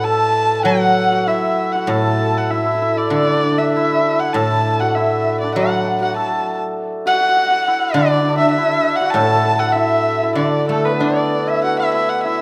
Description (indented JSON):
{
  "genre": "chinese traditional, Chinese chamber ensemble",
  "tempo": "98 BPM",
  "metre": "4/4",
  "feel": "rubato",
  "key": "D gong mode",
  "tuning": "A4 = 440 Hz",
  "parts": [
    { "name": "dark erhu", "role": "melody", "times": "0.0-12.4 s", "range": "A4 to A5", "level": "-21 LUFS", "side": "equal", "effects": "none" },
    { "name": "hammered dulcimer", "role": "second line", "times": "0.0-12.4 s", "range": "A3 to D5", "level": "-22 LUFS", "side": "equal", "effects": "none" },
    { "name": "mellow hollow large dizi", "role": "second line", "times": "0.0-12.4 s", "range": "A4 to A5", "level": "-26 LUFS", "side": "equal", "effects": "none" },
    { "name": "guzheng", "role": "accompaniment", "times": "0.0-12.2 s", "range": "A2 to D4", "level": "-24 LUFS", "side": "equal", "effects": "none" }
  ],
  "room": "moderate recital hall reverb, RT60 1.6 s",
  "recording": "none",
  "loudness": "-17 LUFS",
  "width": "mono",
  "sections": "0.0-11.6 A section",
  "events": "none",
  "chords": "none"
}